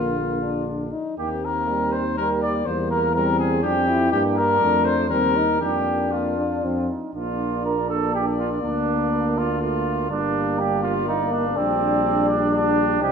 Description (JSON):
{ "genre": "classical, brass quintet", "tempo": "122 BPM", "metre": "3/4", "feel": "rubato", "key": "Bb major from 4.1 s", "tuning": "A4 = 444 Hz", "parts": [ { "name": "warm trumpet", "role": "melody", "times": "0.0-13.1 s", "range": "F4 to Eb5", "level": "-26 LUFS", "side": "left 9 dB", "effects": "none" }, { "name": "warm flugelhorn", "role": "second line", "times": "0.0-13.1 s", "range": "C4 to D5", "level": "-24 LUFS", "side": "right 6 dB", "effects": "none" }, { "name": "clear French horn", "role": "accompaniment", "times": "0.0-13.1 s", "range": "G3 to E4", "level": "-27 LUFS", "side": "left 4 dB", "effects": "none" }, { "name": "warm trombone", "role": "accompaniment", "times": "0.0-13.1 s", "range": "D3 to Eb4", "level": "-28 LUFS", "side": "right 3 dB", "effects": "none" }, { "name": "warm bass trombone", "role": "bass", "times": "0.0-13.1 s", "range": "G1 to G2", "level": "-27 LUFS", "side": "right 1 dB", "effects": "none" } ], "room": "wet recital hall reverb, RT60 1.4 s", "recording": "minimal, uncompressed stereo recording", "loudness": "-20 LUFS", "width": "side -6 dB against mid", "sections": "0.0-7.2 A section; 7.2-13.1 B section", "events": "none", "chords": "0.0 Bb; 1.2 Eb; 2.7 C7/E; 4.1 Gm; 5.1 Cm7/Eb; 5.6 Bb/F; 6.6 F5; 7.2 Bb; 8.6 Bb/D; 10.1 Gm; 11.6 Gm/Bb" }